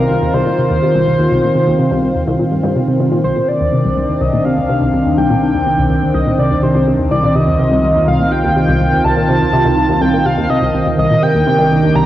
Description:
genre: ambient, sequencer-driven space music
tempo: 124 BPM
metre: 4/4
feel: straight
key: C dorian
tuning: A4 = 443 Hz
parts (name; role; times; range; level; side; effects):
- pulse-width lead; melody; 0.0-12.1 s; Bb4 to Bb5; -17 LUFS; equal; chorus, ping-pong delay
- phased analog pad; sustained chords; 0.0-12.1 s; Eb3 to F4; -15 LUFS; right 1 dB; phaser, chorus
- tight sequenced synth; riff; 0.0-12.0 s; C2 to C3; -16 LUFS; equal; chorus, ping-pong delay
- warm sub bass; bass; 3.2-12.1 s; C2; -25 LUFS; equal; none
room: wet concert hall reverb, RT60 2.5 s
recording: worn, warbling old tape, cassette tape, warbly pitch drift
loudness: -11 LUFS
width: side -13 dB against mid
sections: 0.0-3.2 A section; 3.2-12.1 B section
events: fade-in on sub bass 3.2-12.1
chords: 0.0 Cm; 3.2 Cmadd9

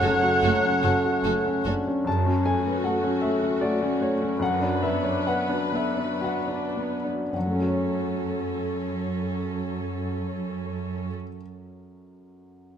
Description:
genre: classical, romantic movement for piano and orchestra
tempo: 51-79 BPM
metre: 3/4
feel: rubato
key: F# minor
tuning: A4 = 435 Hz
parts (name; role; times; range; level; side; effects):
- clear baby grand piano; melody; 0.0-12.8 s; F#2 to A5; -26 LUFS; left 2 dB; none
- warm studio violin section; melody; 0.0-1.7 s; C#5; -33 LUFS; left 5 dB; none
- clear oboe; second line; 0.0-1.6 s; F#5; -29 LUFS; right 2 dB; none
- clear studio violin section; second line; 0.0-1.7 s; F#4 to A4; -35 LUFS; left 1 dB; none
- mellow hollow flute section; second line; 0.0-1.7 s; F#6; -30 LUFS; left 5 dB; none
- dark bassoon; accompaniment; 0.0-1.7 s; A3; -30 LUFS; right 6 dB; none
- rich studio viola section; accompaniment; 0.0-11.1 s; C#3 to B4; -32 LUFS; equal; none
- mellow French horn section; sustained chords; 0.0-1.7 s; F#3; -33 LUFS; left 5 dB; none
- mellow trombone section; sustained chords; 0.0-1.6 s; C#3 to A3; -34 LUFS; right 4 dB; none
- warm trumpet section; stabs; 0.0-1.6 s; F#5; -29 LUFS; right 2 dB; none
- rich studio cello section; bass; 0.0-11.1 s; F#2; -30 LUFS; right 2 dB; none
- rich studio double bass section; bass; 0.0-1.7 s; F#1; -32 LUFS; right 2 dB; none
- timpani; percussion; 0.0-0.8 s; F#2; -39 LUFS; left 1 dB; none
room: light reverb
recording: close, detailed microphones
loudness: -23 LUFS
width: side -8 dB against mid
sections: 0.0-2.1 A section; 2.1-7.3 B section; 7.3-12.8 C section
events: slowing down 0.8-7.3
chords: 0.0 F#m; 4.4 Bm/F#; 7.3 F#m

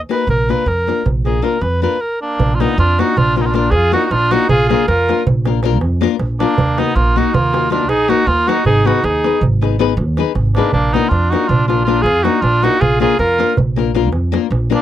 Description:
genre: balkan folk, Balkan wedding band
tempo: 317 BPM (eighths)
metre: 11/8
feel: straight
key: Bb phrygian dominant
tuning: A4 = 440 Hz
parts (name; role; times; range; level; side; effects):
- darbuka; percussion; 0.0-14.8 s; none; -21 LUFS; right 4 dB; none
- warm cor anglais; melody; 0.1-14.8 s; D4 to Cb5; -16 LUFS; right 1 dB; none
- nylon-string guitar; accompaniment; 0.1-14.8 s; Bb3 to Cb5; -18 LUFS; left 12 dB; none
- upright bass; bass; 0.3-14.7 s; Ab1 to F2; -17 LUFS; right 1 dB; none
- clear trumpet; second line; 2.2-14.8 s; Bb3 to F4; -22 LUFS; right 6 dB; none
room: light reverb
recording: dry, close 1970s-style studio recording, faint mains hum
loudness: -12 LUFS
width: side -11 dB against mid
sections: 0.0-2.4 A section; 2.4-14.8 B section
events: cor anglais solo 0.0-2.4; stop 2.0-2.4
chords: 0.3 Bb; 6.6 Ebm; 8.7 Abm; 10.7 Bb

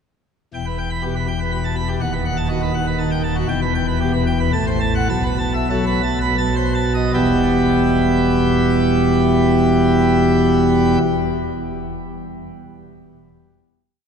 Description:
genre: classical, organ toccata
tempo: 75-123 BPM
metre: 3/4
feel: straight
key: E minor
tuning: A4 = 441 Hz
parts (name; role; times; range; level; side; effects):
- pipe organ, plenum; solo; 0.5-11.0 s; D#1 to B5; -16 LUFS; equal; none
room: wet cathedral reverb, RT60 4.6 s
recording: minimal, uncompressed stereo recording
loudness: -15 LUFS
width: side -6 dB against mid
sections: 0.5-7.1 A section; 7.1-11.9 final chord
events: slowing down 2.7-7.1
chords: 0.5 Em; 2.0 B7/D#; 3.5 Em; 4.5 F#dim/A; 5.1 B7sus4; 6.4 B7b9; 7.1 Em

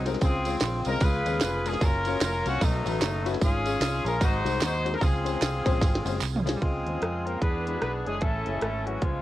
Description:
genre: uptempo gospel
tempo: 150 BPM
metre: 4/4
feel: swing 61% on 8ths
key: Db major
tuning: A4 = 440 Hz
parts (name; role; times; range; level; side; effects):
- clear horn section; melody; 0.0-9.2 s; Gb3 to C5; -29 LUFS; left 1 dB; cassette tape, tape echo
- warm grand piano; accompaniment; 0.0-9.2 s; Ab2 to Eb5; -34 LUFS; left 8 dB; none
- overdriven tonewheel organ; sustained chords; 0.0-9.2 s; Db3 to Bb4; -41 LUFS; right 9 dB; none
- fingered electric bass; bass; 0.0-9.2 s; F1 to F2; -31 LUFS; right 1 dB; none
- minimal click drum kit; drums; 0.1-9.1 s; hi-hat, kick drum, ride cymbal, rim click, snare drum, toms; -27 LUFS; right 1 dB; cassette tape
- tambourine and handclaps; percussion; 0.1-6.5 s; none; -37 LUFS; right 9 dB; none
- breathy tenor saxophone; melody; 6.6-9.2 s; F3 to B3; -36 LUFS; right 3 dB; cassette tape
room: light reverb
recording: home recording on cassette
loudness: -24 LUFS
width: side -14 dB against mid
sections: 0.0-6.6 A section; 6.6-9.2 B section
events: drum fill 5.8-6.6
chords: 0.2 Dbmaj7; 1.0 Db7; 1.8 Gbmaj7; 2.6 Cb9; 3.4 Db/Ab; 4.2 Ab7; 5.0 Dbmaj7; 7.4 E7; 8.2 Amaj7

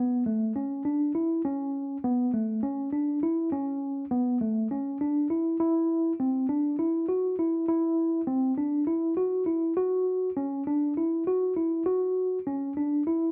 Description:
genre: progressive instrumental, progressive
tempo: 202 BPM (eighths)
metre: 7/8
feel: straight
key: unclear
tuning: A4 = 440 Hz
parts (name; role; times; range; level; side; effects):
- mellow tine electric piano; solo; 0.0-13.3 s; A3 to F#4; -28 LUFS; equal; none
room: moderate studio reverb, RT60 0.9 s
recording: dark, warm production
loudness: -28 LUFS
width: mono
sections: 0.0-5.6 A section; 5.6-13.3 B section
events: none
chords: none

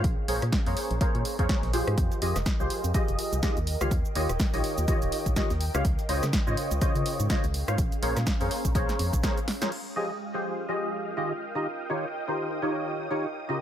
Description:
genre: piano house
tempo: 124 BPM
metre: 4/4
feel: swing 58% on 16ths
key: unclear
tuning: A4 = 440 Hz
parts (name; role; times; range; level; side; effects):
- percussive organ stab; riff; 0.0-13.6 s; Db3 to F5; -30 LUFS; equal; ensemble chorus, sidechain pumping, tape echo
- organ-like FM bass; bass; 0.0-9.2 s; Eb1 to Db3; -29 LUFS; equal; sidechain pumping
- breakbeat sampler-style drum kit; drums; 0.0-9.1 s; hi-hat, snare drum; -45 LUFS; right 1 dB; none
- electronic kick drum; drums; 0.0-9.3 s; none; -28 LUFS; equal; overdrive
- punchy analog drum machine; drums; 0.0-9.8 s; cabasa, crash cymbal, hi-hat, rim click, snare drum; -33 LUFS; equal; overdrive
- ethereal airy pad; texture; 0.0-13.6 s; Db4 to Ab5; -38 LUFS; right 2 dB; ensemble chorus, built-in reverb, sidechain pumping
- analog string pad; sustained chords; 9.7-13.6 s; Ab3 to Eb6; -38 LUFS; equal; ensemble chorus, sidechain pumping
room: light reverb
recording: none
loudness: -25 LUFS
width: side -10 dB against mid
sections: 0.0-9.7 A section; 9.7-13.6 B section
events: drum fill 9.5; filter sweep on analog synth pad 9.7-13.6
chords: 0.0 Bbm9; 2.0 Fm9; 3.7 Eb9; 5.8 Dbmaj9; 7.8 Bbm9; 9.7 Fm9; 11.4 Eb9

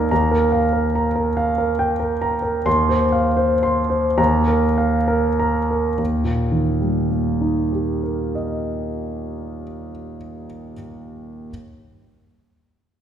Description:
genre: classical, impressionist solo piano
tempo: 31-48 BPM (dotted quarters)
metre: 6/8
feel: rubato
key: Eb major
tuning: A4 = 440 Hz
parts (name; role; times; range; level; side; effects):
- clear concert grand piano; solo; 0.0-11.5 s; Eb2 to C6; -18 LUFS; right 1 dB; none
room: wet recital hall reverb, RT60 1.7 s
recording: heard from further back in the room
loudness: -17 LUFS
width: side -9 dB against mid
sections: 0.0-6.0 A section; 6.0-9.3 B section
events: slowing down 0.0-6.0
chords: 0.1 Ebadd9; 2.7 Ebsus2; 6.0 Eb

